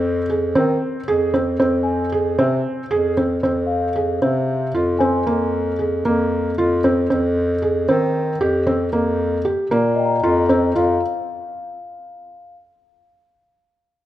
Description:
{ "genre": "contemporary instrumental, chamber music in an uneven meter", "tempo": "230 BPM (eighths)", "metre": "7/8", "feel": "straight", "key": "F minor", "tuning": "A4 = 440 Hz", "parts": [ { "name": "felt-muted upright piano", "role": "arpeggios", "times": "0.0-11.0 s", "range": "Bb3 to Ab4", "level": "-19 LUFS", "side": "right 1 dB", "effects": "none" }, { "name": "mellow bass clarinet", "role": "bass", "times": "0.0-11.0 s", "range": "F2 to Eb3", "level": "-21 LUFS", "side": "left 1 dB", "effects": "none" }, { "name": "large celesta", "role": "texture", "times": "1.8-5.5, 9.9-12.5 s", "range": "Eb5 to C6", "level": "-25 LUFS", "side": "left 3 dB", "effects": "none" } ], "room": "light reverb", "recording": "none", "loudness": "-17 LUFS", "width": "side -13 dB against mid", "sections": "0.0-3.4 A section; 3.4-10.8 B section; 10.8-12.6 C section", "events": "none", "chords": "0.0 Ab/F; 1.6 Fm; 5.3 Bb5/F; 7.1 Ab/F (rootless); 8.9 Ebadd9/F; 10.8 N.C.", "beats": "0.04 0.30 0.56 0.82 1.08 1.34 | 1.61 1.87 2.13 2.39 2.65 2.92 3.18 | 3.44 3.70 3.96 4.22 4.49 4.75 5.01 | 5.27 5.53 5.79 6.05 6.32 6.58 6.84 | 7.10 7.36 7.62 7.88 8.14 8.40 8.67 | 8.93 9.19 9.45 9.71 9.97 10.23 10.49 | 10.75 11.01 11.27 11.53 11.79 12.05 12.31" }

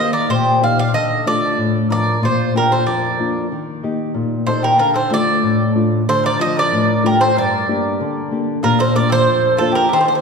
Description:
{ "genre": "greek folk, Greek bouzouki band", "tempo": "93 BPM", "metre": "2/4", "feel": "straight", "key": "D phrygian", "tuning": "A4 = 440 Hz", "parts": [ { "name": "Greek bouzouki", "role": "melody", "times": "0.0-10.2 s", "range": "A4 to F5", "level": "-18 LUFS", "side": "right 3 dB", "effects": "none" }, { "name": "mandolin", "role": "second line", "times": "0.0-10.2 s", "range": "F4 to D5", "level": "-20 LUFS", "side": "left 1 dB", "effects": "none" }, { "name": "nylon-string guitar", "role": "accompaniment", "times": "0.0-10.2 s", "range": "F2 to G4", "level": "-18 LUFS", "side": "left 3 dB", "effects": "none" } ], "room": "wet scoring stage reverb, RT60 1.8 s", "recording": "recorded in a church or concert hall", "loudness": "-14 LUFS", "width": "side -5 dB against mid", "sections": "0.0-6.1 A section; 6.1-10.2 B section", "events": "none", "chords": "0.0 Eb; 0.9 Dm; 2.2 Bb; 3.5 Eb; 4.8 Dm; 7.4 Gm; 8.6 Bb", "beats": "0.29 | 0.93 1.57 | 2.22 2.86 | 3.50 4.15 | 4.79 5.43 | 6.08 6.72 | 7.36 8.01 | 8.65 9.29 | 9.93" }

